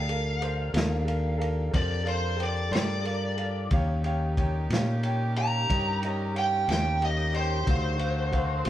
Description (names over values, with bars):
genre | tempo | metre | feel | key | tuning
slow blues | 61 BPM (dotted quarters) | 12/8 | straight | G minor | A4 = 438 Hz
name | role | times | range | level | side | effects
lead guitar through a small cranked amp | melody | 0.0-8.7 s | C5 to Bb5 | -30 LUFS | equal | overdrive
tonewheel organ | sustained chords | 0.0-8.7 s | D3 to C5 | -40 LUFS | left 1 dB | chorus vibrato, slow rotary speaker
fingered electric bass | bass | 0.0-8.7 s | C2 to Bb2 | -28 LUFS | equal | none
clear upright piano | accompaniment | 0.1-8.7 s | F#4 to G5 | -34 LUFS | right 1 dB | none
crunchy breakbeat drum kit | drums | 0.1-8.7 s | kick drum, ride cymbal, snare drum | -31 LUFS | equal | none
bright horn section | sustained chords | 3.7-8.7 s | Eb3 to G4 | -40 LUFS | equal | none
room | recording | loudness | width
moderate stone room reverb, RT60 1.3 s | band playing live in one room | -25 LUFS | side -12 dB against mid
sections
0.0-8.7 A section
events
lead electric guitar solo 0.0-8.7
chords
0.0 Gm7; 3.7 Eb7; 7.7 D7#9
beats
0.74 1.73 2.72 | 3.71 4.70 5.69 6.67 | 7.66 8.65